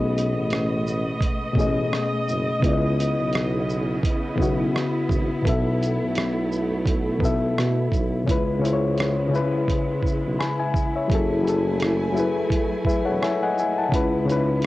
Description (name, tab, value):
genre	lo-fi hip hop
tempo	85 BPM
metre	4/4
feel	swing 59% on 16ths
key	C# minor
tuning	A4 = 443 Hz
part	reed electric piano	accompaniment	0.0-14.7 s	B2 to B5	-24 LUFS	left 3 dB	cassette tape
part	warm studio string section	sustained chords	0.0-14.7 s	C#3 to G#5	-29 LUFS	right 1 dB	cassette tape
part	mellow tuba	bass	0.0-14.7 s	E1 to B2	-26 LUFS	right 1 dB	none
part	lo-fi sampler-style drum kit	drums	0.2-14.7 s	hi-hat, kick drum, rim click, shaker	-25 LUFS	right 1 dB	vintage 12-bit sampler grit, cassette tape
room	light reverb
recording	home recording on cassette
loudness	-20 LUFS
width	side -16 dB against mid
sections	0.0-8.3 A section; 8.3-14.7 B section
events	none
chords	0.0 B13; 2.6 C#m9; 5.5 B7sus4; 8.3 C#m7; 11.1 F#m9; 13.9 C#m7